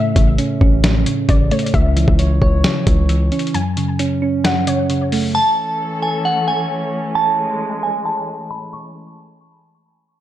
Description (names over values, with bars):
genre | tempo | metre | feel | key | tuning
hip hop, trap | 133 BPM | 4/4 | half-time | A major | A4 = 439 Hz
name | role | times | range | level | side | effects
warbly dusty pluck | second line | 0.0-4.9 s | C#5 to G#5 | -25 LUFS | left 3 dB | chorus, tape echo
soft electric-piano-like synth keys | accompaniment | 0.0-5.4 s | F#2 to C#5 | -18 LUFS | right 2 dB | chorus
hard-hitting 808-style bass | bass | 0.2-3.3 s | A1 to C#2 | -16 LUFS | equal | none
dusty soul sampler-style drum kit | drums | 0.2-5.2 s | hi-hat, kick drum, snare drum | -18 LUFS | equal | none
glassy synth bell | melody | 5.3-8.9 s | F#5 to C#6 | -18 LUFS | right 1 dB | chorus, phaser, low-pass filter
muted chamber string section | sustained chords | 5.3-8.9 s | E3 to A4 | -24 LUFS | left 1 dB | low-pass filter
room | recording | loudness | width
light reverb, digital ambience | dark, warm production | -14 LUFS | side -12 dB against mid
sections
0.0-5.3 A section; 5.3-9.0 B section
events
break 0.0-5.3; filter sweep 5.3-9.0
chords
0.0 A; 1.7 C#m; 3.5 F#m; 5.3 A